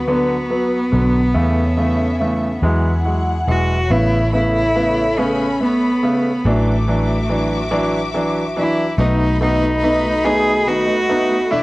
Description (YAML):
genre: six-eight pop ballad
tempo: 47 BPM (dotted quarters)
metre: 6/8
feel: straight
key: A major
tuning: A4 = 440 Hz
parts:
  - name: rich cello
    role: melody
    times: 0.0-11.6 s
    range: A3 to G#4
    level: -19 LUFS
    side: equal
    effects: cassette tape
  - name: warm studio string section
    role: sustained chords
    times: 0.0-11.6 s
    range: A3 to D6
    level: -25 LUFS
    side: left 1 dB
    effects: cassette tape
  - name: vintage muted fingered electric bass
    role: bass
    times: 0.0-11.5 s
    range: E1 to E2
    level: -20 LUFS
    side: equal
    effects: none
  - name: clear grand piano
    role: accompaniment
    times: 0.1-11.6 s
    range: C#3 to E4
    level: -20 LUFS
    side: right 1 dB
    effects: cassette tape
  - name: picked plugged-in steel-string acoustic guitar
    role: arpeggios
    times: 9.0-11.6 s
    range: E2 to F#4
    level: -26 LUFS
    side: left 3 dB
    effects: cassette tape, tape echo
room: moderate spring reverb, RT60 1.1 s, small room ambience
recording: home recording on cassette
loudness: -15 LUFS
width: side -20 dB against mid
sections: 0.0-3.9 A section; 3.9-11.6 B section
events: none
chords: 0.0 D6; 1.4 A/E; 2.6 Eadd9; 3.9 Aadd9; 6.5 Dadd9/A; 9.0 B7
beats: 0.08 | 1.35 2.63 | 3.91 5.19 | 6.46 7.72 | 8.99 10.25 | 11.52